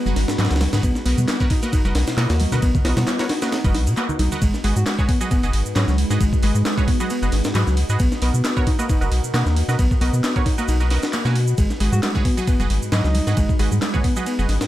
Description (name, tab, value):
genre	breakbeat, breaks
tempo	134 BPM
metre	4/4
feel	swing 55% on 16ths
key	G# minor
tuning	A4 = 440 Hz
part	deep dark ambient pad	sustained chords	0.0-14.7 s	G#3 to D#5	-30 LUFS	left 1 dB	chorus, built-in reverb, vintage 12-bit sampler grit, sidechain pumping
part	overdriven picked electric bass	riff	0.0-14.4 s	F#3 to D#4	-26 LUFS	equal	none
part	band-passed chord stab	stabs	0.0-14.6 s	F#4 to G#5	-29 LUFS	right 4 dB	chorus, dub echo
part	saturated sub bass	bass	0.1-14.7 s	F#1 to B2	-20 LUFS	equal	none
part	punchy analog drum machine	drums	0.1-14.7 s	handclaps, hi-hat, shaker	-30 LUFS	right 1 dB	none
part	congas	percussion	0.1-4.4, 11.9-14.5 s	none	-29 LUFS	right 3 dB	none
part	breakbeat sampler-style drum kit	drums	0.2-14.7 s	kick drum, ride cymbal, snare drum	-22 LUFS	equal	none
part	mellow alto saxophone	melody	4.8-5.9, 11.9-13.6 s	C#4 to F#4	-31 LUFS	equal	AM radio sound, dub echo
room	digital ambience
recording	none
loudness	-17 LUFS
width	side -14 dB against mid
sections	0.0-4.4 A section; 4.4-14.7 A section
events	drop 0.0-4.4, 4.4-14.7; band accent 4.0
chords	0.0 G#m7; 0.8 Bmaj7; 4.4 G#m7; 8.0 Bmaj7; 11.6 G#m7